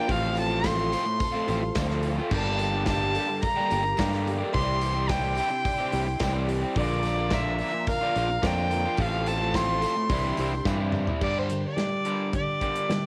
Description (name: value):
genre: folk rock and heartland rock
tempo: 108 BPM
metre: 4/4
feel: straight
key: G dorian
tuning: A4 = 440 Hz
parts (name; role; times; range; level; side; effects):
- warm fiddle; melody; 0.0-13.1 s; C5 to C6; -31 LUFS; equal; cassette tape
- picked plugged-in twelve-string acoustic guitar; accompaniment; 0.0-13.1 s; G2 to Bb4; -38 LUFS; equal; none
- rich studio string section; sustained chords; 0.0-11.2 s; E4 to C6; -43 LUFS; equal; none
- crunchy overdriven guitar; riff; 0.0-13.1 s; G2 to G4; -33 LUFS; equal; none
- fingered electric bass; bass; 0.1-13.1 s; G1 to G3; -31 LUFS; equal; none
- natural country drum kit; drums; 0.1-13.0 s; crash cymbal, hi-hat, kick drum, snare drum, toms; -34 LUFS; equal; none
- tambourine; percussion; 0.1-11.2 s; none; -51 LUFS; equal; none
room: light reverb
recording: home recording on cassette, faint mains hum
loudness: -26 LUFS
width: mono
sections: 0.0-11.2 A section; 11.2-13.1 B section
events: drum fill 10.7-11.2; fiddle solo 11.2-13.1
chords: 0.1 F/A; 2.3 Gmadd9; 4.5 Cadd9; 6.8 Bb; 9.0 F/A; 10.1 Cadd9; 11.2 Gm